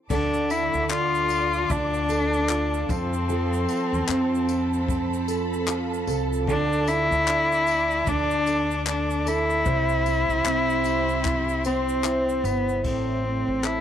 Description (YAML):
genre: acoustic pop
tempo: 75 BPM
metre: 4/4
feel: swing 60% on 16ths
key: unclear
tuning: A4 = 440 Hz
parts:
  - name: warm cello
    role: melody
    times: 0.1-13.8 s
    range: B3 to F4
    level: -24 LUFS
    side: left 2 dB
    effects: none
  - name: fingerpicked plugged-in steel-string acoustic guitar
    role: accompaniment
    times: 0.1-13.8 s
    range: A2 to C5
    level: -27 LUFS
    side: right 2 dB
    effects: double-tracked left and right
  - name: warm symphonic string section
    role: sustained chords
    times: 0.1-12.8 s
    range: G4 to D6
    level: -36 LUFS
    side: right 1 dB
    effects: none
  - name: upright bass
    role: bass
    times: 0.1-13.8 s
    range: G1 to F2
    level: -30 LUFS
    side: equal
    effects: none
  - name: jazz brush drum kit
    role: drums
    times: 0.1-13.8 s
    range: crash cymbal, handclaps, kick drum, tambourine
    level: -31 LUFS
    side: left 2 dB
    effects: none
  - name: egg shaker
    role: percussion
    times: 0.1-12.8 s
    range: none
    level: -43 LUFS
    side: right 22 dB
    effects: none
room: light reverb, small room ambience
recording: 1960s-style stereo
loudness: -21 LUFS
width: side -9 dB against mid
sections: 0.1-12.8 A section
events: none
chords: 0.1 Dm; 2.9 F; 6.5 D5; 9.7 C; 12.8 Am